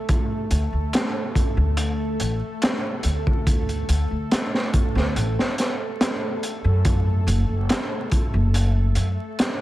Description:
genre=trip hop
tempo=71 BPM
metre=4/4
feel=straight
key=unclear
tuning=A4 = 440 Hz
part: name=bowed-like drone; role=texture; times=0.0-9.6 s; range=A3 to A4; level=-30 LUFS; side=right 1 dB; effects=built-in reverb
part: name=crunchy breakbeat drum kit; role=drums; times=0.1-9.6 s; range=hi-hat, kick drum, snare drum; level=-23 LUFS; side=equal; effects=none
part: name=upright bass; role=bass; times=0.5-9.2 s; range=F#1 to F#2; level=-21 LUFS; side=equal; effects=none
room=light reverb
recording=vinyl crackle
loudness=-20 LUFS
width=side -16 dB against mid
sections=0.0-9.6 A section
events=none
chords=0.1 D5; 6.8 F#m

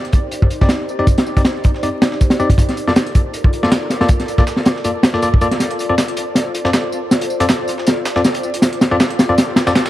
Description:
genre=drum and bass, jungle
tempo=159 BPM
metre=4/4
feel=swing 54% on 16ths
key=D phrygian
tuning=A4 = 440 Hz
part: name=ethereal airy pad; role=sustained chords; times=0.0-9.9 s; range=Eb4 to D5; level=-24 LUFS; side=equal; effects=ensemble chorus, built-in reverb, vintage 12-bit sampler grit
part: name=breakbeat sampler-style drum kit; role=drums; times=0.0-9.9 s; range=hi-hat, snare drum, tambourine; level=-27 LUFS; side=right 2 dB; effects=high-pass filter on snare, high-pass filter on perc, high-pass filter on hats
part: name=crunchy breakbeat drum kit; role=drums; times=0.1-9.9 s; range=hi-hat, kick drum, snare drum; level=-14 LUFS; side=equal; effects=none
part: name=bell-like tine electric piano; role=stabs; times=0.6-9.7 s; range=Bb3 to D5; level=-20 LUFS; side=left 1 dB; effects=dub echo
room=light reverb, small room ambience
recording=vinyl crackle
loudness=-13 LUFS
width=side -14 dB against mid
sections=0.0-9.9 A section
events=build-up 0.0-9.9; filter sweep on ambient pad 0.0-9.9; drum fill 5.6-9.9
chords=0.0 Cmadd9; 2.6 Bbmaj7; 5.6 Dm7; 8.6 Gm7

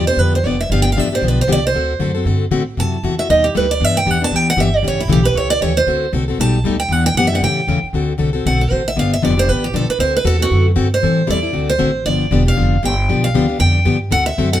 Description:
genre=acoustic string swing (jazz manouche)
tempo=233 BPM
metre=4/4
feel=swing 57% on 8ths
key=D mixolydian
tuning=A4 = 440 Hz
part: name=picked steel-string acoustic guitar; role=melody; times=0.0-14.6 s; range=E4 to A5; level=-18 LUFS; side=right 2 dB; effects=none
part: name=picked plugged-in steel-string acoustic guitar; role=accompaniment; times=0.0-14.6 s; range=B2 to A4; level=-18 LUFS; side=left 4 dB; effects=none
part: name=upright bass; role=bass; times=0.0-14.6 s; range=E1 to A2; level=-18 LUFS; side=right 1 dB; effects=none
room=light reverb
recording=band playing live in one room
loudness=-13 LUFS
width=side -12 dB against mid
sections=0.0-7.9 A section; 7.9-14.6 A section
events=steel-string acoustic guitar solo 0.0-7.9, 7.9-14.6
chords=0.0 G7; 1.7 D7; 2.8 F#m7b5; 3.3 B7alt; 3.8 Em7; 4.8 A7; 5.9 D7; 6.4 B7alt; 6.9 Em7; 7.4 A7; 7.9 D7; 9.0 G7; 10.0 D7; 11.0 Am7; 11.5 D7; 12.1 G7

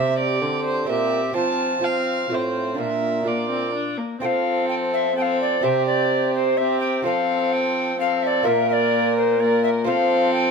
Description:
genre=classical, renaissance-style consort dance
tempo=127 BPM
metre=3/4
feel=straight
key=unclear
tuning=A4 = 439 Hz
part: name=alto recorder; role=melody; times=0.0-10.5 s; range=F4 to G5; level=-24 LUFS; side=left 2 dB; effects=none
part: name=dark violin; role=second line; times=0.0-10.5 s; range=G4 to A5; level=-26 LUFS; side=right 3 dB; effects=none
part: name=lute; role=accompaniment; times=0.0-10.5 s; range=A2 to C5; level=-28 LUFS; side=right 4 dB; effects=none
part: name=rich viola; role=accompaniment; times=0.0-10.5 s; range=Bb3 to D4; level=-27 LUFS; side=left 4 dB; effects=none
part: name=mellow bassoon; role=bass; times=0.0-10.5 s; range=A2 to F3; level=-24 LUFS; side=right 1 dB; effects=none
room=moderate stone room reverb, RT60 1.1 s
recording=close, detailed microphones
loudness=-19 LUFS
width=side -5 dB against mid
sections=0.0-4.2 A section; 4.2-10.5 A section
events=none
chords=0.0 C; 1.4 F; 2.8 Bb; 4.2 F; 5.6 C5; 7.0 F; 8.5 Bb; 9.9 F

